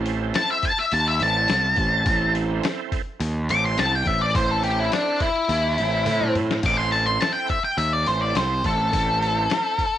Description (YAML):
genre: blues rock power trio and southern rock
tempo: 105 BPM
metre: 4/4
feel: straight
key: A minor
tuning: A4 = 440 Hz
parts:
  - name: overdriven tonewheel organ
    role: sustained chords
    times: 0.0-9.9 s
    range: C4 to D5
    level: -31 LUFS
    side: right 16 dB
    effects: slow rotary speaker, chorus vibrato
  - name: fuzz picked electric bass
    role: bass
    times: 0.0-9.5 s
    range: A1 to A2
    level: -24 LUFS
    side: right 1 dB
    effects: overdrive
  - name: lo-fi sampler-style drum kit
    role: drums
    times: 0.1-9.9 s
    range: crash cymbal, hi-hat, kick drum, snare drum, toms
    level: -28 LUFS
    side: left 2 dB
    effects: none
  - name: octave-fuzz lead guitar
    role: melody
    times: 0.4-10.0 s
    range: D4 to D6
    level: -21 LUFS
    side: left 2 dB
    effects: distortion
room: little or no reverb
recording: 1960s-style stereo, nothing above 10.8 kHz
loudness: -19 LUFS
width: side -11 dB against mid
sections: 0.0-6.6 A section; 6.6-10.0 A section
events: lead electric guitar solo 0.0-10.0; drum fill 6.1-6.6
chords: 0.0 Am